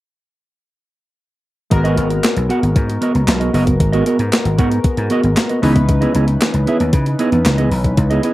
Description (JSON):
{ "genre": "early-eighties boogie funk", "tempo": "115 BPM", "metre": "4/4", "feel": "straight", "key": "G# minor", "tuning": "A4 = 440 Hz", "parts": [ { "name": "chorused polysynth", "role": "accompaniment", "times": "1.7-8.3 s", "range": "E3 to B4", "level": "-21 LUFS", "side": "left 2 dB", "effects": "none" }, { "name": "mellow electric guitar", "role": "riff", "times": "1.7-8.3 s", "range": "B3 to F#5", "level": "-18 LUFS", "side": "right 3 dB", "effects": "wide subtle chorus" }, { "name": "vintage slap bass", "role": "bass", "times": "1.7-8.2 s", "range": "F#1 to C#3", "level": "-16 LUFS", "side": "equal", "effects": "none" }, { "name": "clean 12-bit digital drum machine", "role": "drums", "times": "1.7-8.3 s", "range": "handclaps, hi-hat, kick drum, snare drum", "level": "-17 LUFS", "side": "equal", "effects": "overdrive" } ], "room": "moderate small room reverb, RT60 0.5 s", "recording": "rough home demo mix", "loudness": "-13 LUFS", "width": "side -16 dB against mid", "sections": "1.7-8.3 A section", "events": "none", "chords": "1.7 G#m9; 5.6 C#m9", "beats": "| 1.72 2.24 2.76 3.28 | 3.80 4.32 4.84 5.37 | 5.89 6.41 6.93 7.45 | 7.98" }